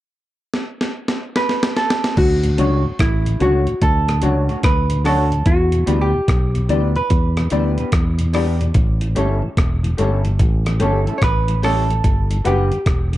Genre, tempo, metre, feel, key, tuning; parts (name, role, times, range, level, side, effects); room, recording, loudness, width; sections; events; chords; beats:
roots reggae; 73 BPM; 4/4; swing 64% on 16ths; D major; A4 = 439 Hz
breakbeat sampler-style drum kit; drums; 0.5-13.2 s; crash cymbal, hi-hat, kick drum, rim click, snare drum; -19 LUFS; equal
vintage hollow-body jazz guitar; melody; 1.4-13.2 s; E4 to C#5; -21 LUFS; right 1 dB
fingered electric bass; bass; 2.2-13.2 s; E1 to E2; -18 LUFS; equal
mellow tonewheel organ; accompaniment; 2.4-13.2 s; D2 to F#4; -27 LUFS; left 1 dB; slow rotary speaker
electric guitar through a small old amp; accompaniment; 2.6-12.7 s; G3 to C#5; -26 LUFS; right 1 dB; lush chorus
warm concert grand piano; stabs; 2.6-12.6 s; D4 to F#5; -24 LUFS; left 4 dB
little or no reverb; cassette tape; -15 LUFS; side -15 dB against mid
0.0-2.2 A section; 2.2-13.2 B section
drum fill 0.5-2.2
0.0 N.C.; 2.2 Dmaj7; 5.5 Em7; 8.7 A7; 12.0 Gmaj7
0.53 1.35 | 2.17 2.99 3.81 4.64 | 5.46 6.28 7.10 7.93 | 8.75 9.57 10.39 11.22 | 12.04 12.86